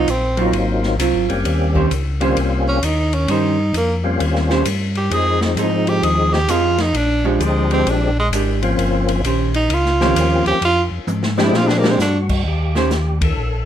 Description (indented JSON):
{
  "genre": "soul jazz organ trio",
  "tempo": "131 BPM",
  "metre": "4/4",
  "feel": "swing 65% on 8ths",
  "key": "Eb mixolydian",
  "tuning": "A4 = 440 Hz",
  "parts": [
    { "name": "bright tenor saxophone", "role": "melody", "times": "0.0-12.2 s", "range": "F3 to Ab4", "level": "-19 LUFS", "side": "right 2 dB", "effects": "plate reverb" },
    { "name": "archtop guitar, miked and amplified", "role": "accompaniment", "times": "0.0-12.9 s", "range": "Eb3 to C5", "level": "-21 LUFS", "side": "right 5 dB", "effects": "none" },
    { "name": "mellow tonewheel organ", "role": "bass", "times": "0.0-13.7 s", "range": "Gb1 to Bb2", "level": "-20 LUFS", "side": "equal", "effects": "slow rotary speaker" },
    { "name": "open jazz drum kit", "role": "drums", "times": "0.1-13.3 s", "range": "crash cymbal, hi-hat, kick drum, ride cymbal, snare drum, toms", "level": "-24 LUFS", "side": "left 2 dB", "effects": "none" },
    { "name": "percussive tonewheel organ", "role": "melody", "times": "0.4-13.7 s", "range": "F3 to A4", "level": "-21 LUFS", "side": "left 3 dB", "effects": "slow rotary speaker, overdrive, chorus vibrato, plate reverb" }
  ],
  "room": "light reverb",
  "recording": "none",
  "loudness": "-15 LUFS",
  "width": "side -10 dB against mid",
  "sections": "0.0-12.5 A section; 12.5-13.7 B section",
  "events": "tenor saxophone solo 0.0-12.5; drum fill 11.1-12.0; band accent 13.1",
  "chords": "0.0 Ab13; 1.5 Eb13; 5.1 Fm7; 7.0 Bb13; 8.8 Eb13; 10.6 Fm; 11.5 Bb13; 12.5 Eb",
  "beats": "0.08 0.54 1.00 | 1.45 1.91 2.37 2.83 | 3.29 3.74 4.20 4.66 | 5.12 5.58 6.04 6.49 | 6.95 7.41 7.87 8.33 | 8.79 9.24 9.70 10.16 | 10.62 11.08 11.54 12.00 | 12.46 12.91 13.38"
}